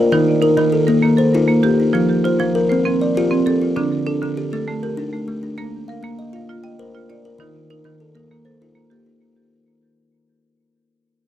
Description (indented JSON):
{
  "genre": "southern african traditional, mbira-style interlocking cycle",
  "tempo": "132 BPM (dotted quarters)",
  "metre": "12/8",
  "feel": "straight",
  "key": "unclear",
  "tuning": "A4 = 440 Hz",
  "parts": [
    { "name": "buzzing kalimba", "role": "arpeggios", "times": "0.0-9.4 s", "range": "D3 to G5", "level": "-18 LUFS", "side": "left 4 dB", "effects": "none" },
    { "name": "marimba with hard mallets", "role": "arpeggios", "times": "0.0-9.4 s", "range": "D3 to F5", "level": "-20 LUFS", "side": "right 5 dB", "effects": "tape echo" }
  ],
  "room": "light reverb",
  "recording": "dry, close 1970s-style studio recording",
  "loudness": "-15 LUFS",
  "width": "side -12 dB against mid",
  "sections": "0.0-9.2 A section",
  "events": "fade-out 0.0-9.2",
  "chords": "0.1 Eb; 1.9 F; 3.8 D5; 5.6 Bb; 7.4 Eb",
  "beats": "| 0.12 0.57 1.03 1.48 | 1.94 2.39 2.85 3.30 | 3.76 4.21 4.67 5.12 | 5.58 6.03 6.49 6.94 | 7.40 7.85 8.31 8.76"
}